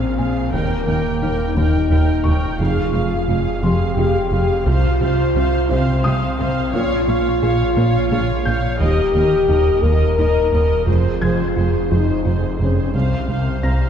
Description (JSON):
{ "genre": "cinematic", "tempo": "58 BPM (dotted quarters)", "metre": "6/8", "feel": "straight", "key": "F minor", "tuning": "A4 = 440 Hz", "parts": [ { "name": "rich symphonic viola section", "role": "accompaniment", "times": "0.0-13.9 s", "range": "Ab4 to G5", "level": "-25 LUFS", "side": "right 2 dB", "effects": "none" }, { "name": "mellow French horn section", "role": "sustained chords", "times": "0.0-13.9 s", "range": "Bb3 to Bb4", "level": "-20 LUFS", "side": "left 2 dB", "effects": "none" }, { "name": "thumb-piano-like synth pluck", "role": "arpeggios", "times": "0.0-13.8 s", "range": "C3 to Ab4", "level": "-29 LUFS", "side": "left 2 dB", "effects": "chorus, digital delay" }, { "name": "smooth synth bass", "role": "riff", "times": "0.0-13.8 s", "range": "C2 to Bb3", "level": "-21 LUFS", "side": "right 1 dB", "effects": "none" }, { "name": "wide detuned saw bass", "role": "bass", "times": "0.0-13.9 s", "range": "Eb1 to C2", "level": "-25 LUFS", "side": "equal", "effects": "chorus" }, { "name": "felt-muted upright piano", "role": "texture", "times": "0.0-13.9 s", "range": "Ab5 to Bb6", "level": "-32 LUFS", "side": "left 2 dB", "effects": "digital delay" }, { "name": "warm symphonic cello section", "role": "bass", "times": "0.2-13.7 s", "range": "C2 to C3", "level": "-26 LUFS", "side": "right 1 dB", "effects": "none" }, { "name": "warm symphonic double bass section", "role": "bass", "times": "0.2-13.7 s", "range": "F1 to Eb2", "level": "-25 LUFS", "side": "right 2 dB", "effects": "none" } ], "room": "wet scoring stage reverb, RT60 1.9 s", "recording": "heard from further back in the room", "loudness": "-15 LUFS", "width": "side -8 dB against mid", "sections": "0.0-13.9 A section", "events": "none", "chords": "0.0 Bb7(no3); 0.5 Eb; 2.6 Fm; 4.7 Csus4; 6.7 Bbm7; 8.8 Eb; 10.9 Fm; 12.9 Csus4" }